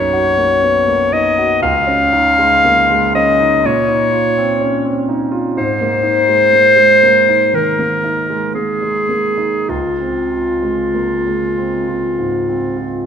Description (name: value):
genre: classical, impressionist duo for clarinet and grand piano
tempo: 48-63 BPM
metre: 4/4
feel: rubato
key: Db major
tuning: A4 = 445 Hz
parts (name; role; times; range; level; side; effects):
- clear clarinet; melody; 0.0-13.1 s; F4 to F5; -13 LUFS; left 2 dB; none
- warm concert grand piano; accompaniment; 0.0-13.1 s; Db2 to Gb4; -18 LUFS; right 2 dB; none
room: moderate scoring stage reverb, RT60 1.7 s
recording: minimal, uncompressed stereo recording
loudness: -12 LUFS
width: side -8 dB against mid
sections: 0.0-13.1 A section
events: none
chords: 0.0 Cbmaj7; 1.6 Dbadd9; 3.6 Bbmadd9; 5.6 Absus2; 9.7 Dbmaj7